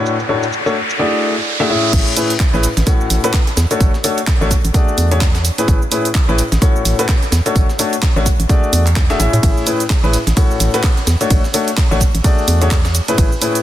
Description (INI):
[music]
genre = piano house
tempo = 128 BPM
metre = 4/4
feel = swing 58% on 16ths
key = unclear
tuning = A4 = 444 Hz
[part]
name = clear upright piano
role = riff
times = 0.0-13.6 s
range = A2 to E5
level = -18 LUFS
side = left 2 dB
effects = sidechain pumping, digital delay
[part]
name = riser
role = sound effects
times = 0.0-1.9 s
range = none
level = -20 LUFS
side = right 1 dB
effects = none
[part]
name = house drum kit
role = drums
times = 0.1-13.6 s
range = crash cymbal, handclaps, hi-hat, ride cymbal, shaker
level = -21 LUFS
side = right 2 dB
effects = low-pass filter on perc, low-pass filter on hats, low-pass filter on cymbals, low-pass filter on snare, low-pass filter on room
[part]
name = organ-like FM bass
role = bass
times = 1.9-13.3 s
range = E1 to A2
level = -15 LUFS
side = equal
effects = sidechain pumping
[part]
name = breakbeat sampler-style drum kit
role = drums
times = 1.9-13.5 s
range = hi-hat, snare drum, tambourine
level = -29 LUFS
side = equal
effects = none
[part]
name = electronic kick drum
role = drums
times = 1.9-13.3 s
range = none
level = -14 LUFS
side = equal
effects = none
[sound]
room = light reverb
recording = dense, heavily limited modern master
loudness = -12 LUFS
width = side -13 dB against mid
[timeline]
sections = 0.0-1.9 A section; 1.9-13.6 B section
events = riser 0.0-1.9; drop 1.9-13.6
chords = 0.1 Dmaj7/A; 0.8 E13/A; 1.9 C#m7/A; 2.9 A6; 3.8 Dmaj7/A; 4.5 E13/A; 5.7 C#m7/A; 6.6 A6; 7.6 Dmaj7/A; 8.3 E13/A; 9.4 C#m7/A; 10.4 A6; 11.3 Dmaj7/A; 12.0 E13/A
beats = | 0.06 0.53 0.99 1.46 | 1.93 2.40 2.87 3.34 | 3.81 4.28 4.74 5.21 | 5.68 6.15 6.62 7.09 | 7.56 8.03 8.49 8.96 | 9.43 9.90 10.37 10.84 | 11.31 11.78 12.24 12.71 | 13.18